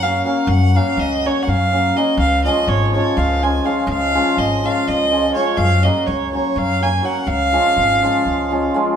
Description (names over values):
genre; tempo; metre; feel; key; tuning
balkan folk, Balkan wedding band; 247 BPM (eighths); 7/8; straight; Db major; A4 = 440 Hz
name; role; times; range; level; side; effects
warm violin; melody; 0.0-8.7 s; Db5 to Ab5; -18 LUFS; right 2 dB; none
hammered dulcimer; accompaniment; 0.0-9.0 s; F3 to Gb4; -19 LUFS; left 1 dB; none
upright bass; bass; 0.0-8.7 s; Ab1 to Gb2; -20 LUFS; left 1 dB; none
room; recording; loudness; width
wet stone room reverb, RT60 1.3 s; band playing live in one room; -14 LUFS; side -8 dB against mid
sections
0.0-9.0 A section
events
none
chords
0.0 Gb; 2.2 Db; 5.6 Gb; 7.3 Db